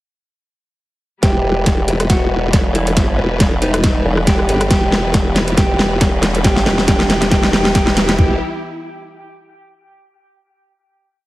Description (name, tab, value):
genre	heavy wobble dubstep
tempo	138 BPM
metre	4/4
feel	swing 55% on 16ths, half-time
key	E minor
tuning	A4 = 440 Hz
part	mellow electric guitar	melody	1.2-8.3 s	D#4 to G4	-22 LUFS	equal	spring reverb, low-pass filter, dub echo
part	bright symphonic string section	sustained chords	1.2-8.4 s	E3 to B4	-27 LUFS	left 1 dB	sidechain pumping, low-pass filter
part	formant-sweep wobble bass	bass	1.2-8.4 s	E1 to G1	-18 LUFS	equal	chorus, overdrive
part	dubstep drum kit	drums	1.2-8.3 s	kick drum, toms	-16 LUFS	equal	overdrive, studio reverb
part	dubstep drum kit	drums	1.2-8.2 s	hi-hat, rim click, snare drum	-17 LUFS	equal	studio reverb
part	riser	sound effects	5.1-8.2 s	none	-29 LUFS	equal	none
part	formant-sweep wobble bass	bass	1.7-7.1 s	E1 to G1	-18 LUFS	equal	chorus, overdrive
room	moderate digital room reverb, RT60 1.0 s, digital ambience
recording	heavily compressed radio sound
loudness	-12 LUFS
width	side -17 dB against mid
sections	1.2-8.2 build; 8.2-9.9 final chord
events	build-up 1.2-8.2; drum fill 1.2-8.2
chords	1.2 Em